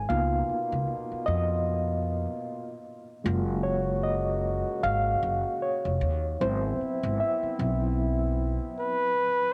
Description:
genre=R&B, neo-soul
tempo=76 BPM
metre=4/4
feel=swing 58% on 16ths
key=unclear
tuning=A4 = 438 Hz
part: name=mellow reed electric piano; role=accompaniment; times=0.0-9.5 s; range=Gb3 to F5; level=-32 LUFS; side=equal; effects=fast tremolo
part: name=upright bass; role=bass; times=0.0-8.6 s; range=F1 to F2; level=-31 LUFS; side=equal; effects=none
part: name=clear trombone section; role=stabs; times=0.1-9.1 s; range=Cb3 to Gb4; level=-38 LUFS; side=equal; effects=tape echo
part: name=warm flugelhorn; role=melody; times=8.8-9.5 s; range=B4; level=-26 LUFS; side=equal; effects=none
room=wet echo chamber reverb, RT60 1.9 s, small room ambience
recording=none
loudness=-28 LUFS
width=mono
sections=0.0-9.5 A section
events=reed electric piano solo 0.0-9.5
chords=0.1 Db13; 3.2 Gbmaj9; 6.4 Ab7alt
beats=| 0.08 0.87 1.66 2.45 | 3.24 4.03 4.82 5.61 | 6.40 7.18 7.97 8.76

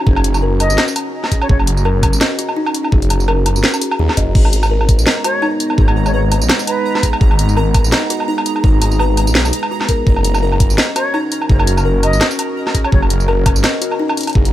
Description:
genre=half-time drum and bass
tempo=168 BPM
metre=4/4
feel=swing 56% on 16ths, half-time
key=unclear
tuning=A4 = 440 Hz
part: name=dark analog pad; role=sustained chords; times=0.0-14.5 s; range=G#3 to A#5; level=-23 LUFS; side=right 1 dB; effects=chorus, phaser, sidechain pumping
part: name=kalimba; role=arpeggios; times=0.1-14.5 s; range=D#4 to D#5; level=-22 LUFS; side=left 3 dB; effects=digital delay
part: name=phased detuned saw bass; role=bass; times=0.1-14.5 s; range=F#1 to D#2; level=-15 LUFS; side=equal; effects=phaser
part: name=electronic kick drum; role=drums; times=0.1-14.4 s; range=none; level=-13 LUFS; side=equal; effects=none
part: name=drum and bass drum kit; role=drums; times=0.2-14.5 s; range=crash cymbal, hi-hat, snare drum, tambourine, woodblock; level=-18 LUFS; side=right 1 dB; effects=none
part: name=concert flute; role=melody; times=0.6-1.6, 5.2-7.0, 11.0-13.0 s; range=B4 to D#5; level=-23 LUFS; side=equal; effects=digital delay
part: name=pulsing gated texture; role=texture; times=4.7-14.5 s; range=A#5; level=-28 LUFS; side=right 4 dB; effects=chorus, built-in reverb
room=light reverb, digital ambience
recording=none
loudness=-12 LUFS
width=side -13 dB against mid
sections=0.0-14.5 A section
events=none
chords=0.0 F#; 4.4 G#m; 10.1 F#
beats=| 0.07 0.42 0.78 1.14 | 1.50 1.85 2.21 2.57 | 2.92 3.28 3.64 4.00 | 4.35 4.71 5.07 5.42 | 5.78 6.14 6.50 6.85 | 7.21 7.57 7.92 8.28 | 8.64 8.99 9.35 9.71 | 10.07 10.42 10.78 11.14 | 11.49 11.85 12.21 12.57 | 12.92 13.28 13.64 13.99 | 14.35

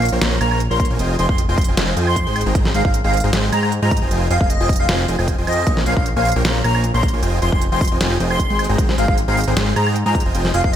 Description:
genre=future bass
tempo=154 BPM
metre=4/4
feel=swing 53% on 16ths, half-time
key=F minor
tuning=A4 = 440 Hz
part: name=airy dreamy lead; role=melody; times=0.0-10.8 s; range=Eb5 to C6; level=-23 LUFS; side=equal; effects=chorus, cassette tape, sidechain pumping, ping-pong delay
part: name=dense compressed supersaw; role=riff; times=0.0-10.8 s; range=Ab3 to C6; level=-22 LUFS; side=right 1 dB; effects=sidechain pumping
part: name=fat analog bass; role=bass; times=0.0-10.8 s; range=F1 to Ab2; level=-20 LUFS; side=equal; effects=sidechain pumping
part: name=dubstep drum kit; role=drums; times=0.0-10.8 s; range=hi-hat, snare drum, woodblock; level=-23 LUFS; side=equal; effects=studio reverb
part: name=electronic kick drum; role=drums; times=0.8-10.7 s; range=none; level=-19 LUFS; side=equal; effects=overdrive, studio reverb
room=light reverb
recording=none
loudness=-15 LUFS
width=side -10 dB against mid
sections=0.0-10.8 A section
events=none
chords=0.0 Bbm7; 1.0 Fm7; 2.4 Abmaj7; 3.9 Fm7; 5.7 Bbm7; 7.2 Fm7; 8.6 Abmaj7; 10.1 Fm7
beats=0.21 0.60 | 0.99 1.38 1.77 2.16 | 2.55 2.94 3.33 3.72 | 4.11 4.50 4.89 5.28 | 5.67 6.06 6.45 6.84 | 7.23 7.62 8.01 8.39 | 8.79 9.17 9.56 9.95 | 10.34 10.73

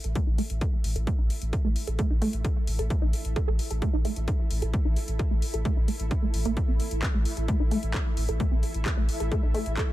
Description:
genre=driving peak-time techno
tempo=131 BPM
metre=4/4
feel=straight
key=unclear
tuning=A4 = 440 Hz
part: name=resonant blip pluck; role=riff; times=0.0-9.8 s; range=A3 to A4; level=-33 LUFS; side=right 1 dB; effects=phaser, tube saturation, sidechain pumping, digital delay
part: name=saturated sub bass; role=bass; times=0.0-9.8 s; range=A1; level=-29 LUFS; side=equal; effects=tube saturation, sidechain pumping, low-pass filter
part: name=punchy analog drum machine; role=drums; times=0.0-9.9 s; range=handclaps, hi-hat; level=-37 LUFS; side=left 2 dB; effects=overdrive, sidechain pumping on hats, sidechain pumping on cymbals
part: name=granular cloud pad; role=texture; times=0.0-9.9 s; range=E4 to E5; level=-39 LUFS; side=right 1 dB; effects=built-in reverb, sidechain pumping
part: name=electronic kick drum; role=drums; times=0.2-9.9 s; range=none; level=-26 LUFS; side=equal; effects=overdrive
room=little or no reverb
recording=none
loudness=-24 LUFS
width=side -15 dB against mid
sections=0.0-9.9 A section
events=fade-in on ambient pad 0.0-9.9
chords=0.0 A5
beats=0.16 0.61 | 1.07 1.53 1.99 2.45 | 2.90 3.36 3.82 4.28 | 4.74 5.19 5.65 6.11 | 6.57 7.03 7.48 7.94 | 8.40 8.86 9.32 9.77

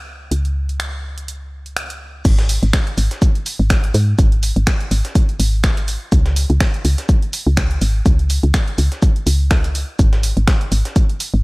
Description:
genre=deep house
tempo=124 BPM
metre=4/4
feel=swing 56% on 16ths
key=unclear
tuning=A4 = 440 Hz
part: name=woody FM bass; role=bass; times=0.0-11.4 s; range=G#1 to G#2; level=-17 LUFS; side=equal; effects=sidechain pumping
part: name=house drum kit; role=drums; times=0.3-11.3 s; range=crash cymbal, finger snaps, hi-hat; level=-25 LUFS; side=right 1 dB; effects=none
part: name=dusty soul sampler-style drum kit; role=drums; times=2.3-11.3 s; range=hi-hat, shaker, snare drum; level=-30 LUFS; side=equal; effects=high-pass filter on perc, high-pass filter on snare, high-pass filter on hats, high-pass filter on room
part: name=electronic kick drum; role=drums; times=2.3-11.1 s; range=none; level=-14 LUFS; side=equal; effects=none
room=little or no reverb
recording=none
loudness=-14 LUFS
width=side -26 dB against mid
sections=0.0-2.2 A section; 2.2-11.4 B section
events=drop 2.2-11.4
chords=none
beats=| 0.32 0.80 1.28 1.77 | 2.25 2.73 3.22 3.70 | 4.19 4.67 5.15 5.64 | 6.12 6.61 7.09 7.57 | 8.06 8.54 9.02 9.51 | 9.99 10.48 10.96

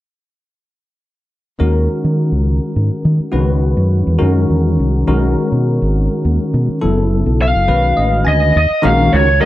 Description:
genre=electric jazz fusion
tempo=69 BPM (dotted quarters)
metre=6/8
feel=straight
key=Eb minor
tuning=A4 = 440 Hz
part: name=barky tine electric piano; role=accompaniment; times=1.6-9.5 s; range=Db3 to G#5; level=-17 LUFS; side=left 1 dB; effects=phaser
part: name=fingered electric bass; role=bass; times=1.6-9.4 s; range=Gb1 to Eb3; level=-14 LUFS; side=equal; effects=none
part: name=lead guitar through a small cranked amp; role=melody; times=7.4-9.5 s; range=Db5 to F5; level=-14 LUFS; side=equal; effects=overdrive
room=little or no reverb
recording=dry, close 1970s-style studio recording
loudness=-12 LUFS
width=side -15 dB against mid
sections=1.6-8.6 A section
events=tine electric piano fill 7.7-8.6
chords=1.6 Ebm7; 3.3 Dbm7; 4.2 Gb13; 5.1 B6; 6.8 Gbm7; 7.7 B13; 8.6 Ebm11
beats=| 1.60 2.47 | 3.34 4.21 | 5.08 5.95 | 6.82 7.69 | 8.56 9.43

